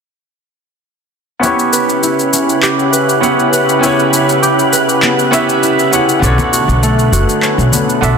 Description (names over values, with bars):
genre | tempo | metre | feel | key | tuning
sunset chillout | 100 BPM | 4/4 | straight | unclear | A4 = 437 Hz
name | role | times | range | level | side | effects
bright baby grand piano | accompaniment | 1.4-8.2 s | D3 to F#5 | -16 LUFS | moving between left 2 dB and right 5 dB | auto-pan, low-pass filter, digital delay
lush unison pad | sustained chords | 1.4-8.2 s | C#3 to B4 | -16 LUFS | equal | chorus
concert harp | arpeggios | 1.4-8.2 s | A3 to B4 | -16 LUFS | right 1 dB | low-pass filter, digital delay
electronic shaker and handclaps | drums | 1.4-8.2 s | none | -17 LUFS | left 3 dB | none
wind-like tuned noise texture | texture | 2.0-8.2 s | F#5 | -22 LUFS | right 1 dB | built-in reverb
upright bass | bass | 6.2-8.1 s | F#1 to B1 | -13 LUFS | equal | none
congas | percussion | 6.4-7.8 s | none | -21 LUFS | left 4 dB | none
room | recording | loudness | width
moderate lush hall reverb, RT60 2.3 s | dense, heavily limited modern master | -10 LUFS | side -6 dB against mid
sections
1.4-8.2 A section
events
filter sweep on harp 1.4-8.2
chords
1.4 C#m7b5; 6.2 Bm9